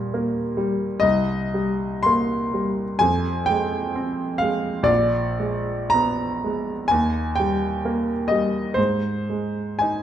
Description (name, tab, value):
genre	classical, romantic nocturne for solo piano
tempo	54-68 BPM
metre	4/4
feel	rubato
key	Eb major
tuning	A4 = 440 Hz
part	clear baby grand piano	solo	0.0-10.0 s	Bb1 to C6	-20 LUFS	equal	none
room	wet recital hall reverb, RT60 1.4 s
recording	none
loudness	-20 LUFS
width	side -10 dB against mid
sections	0.0-10.0 A section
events	none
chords	0.0 Eb; 1.0 Cm7; 3.0 Fm; 4.9 Bb7b9; 6.9 Eb; 8.8 Ab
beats	0.14 | 1.04 2.06 3.02 3.97 | 4.89 5.93 6.90 7.84 | 8.77 9.83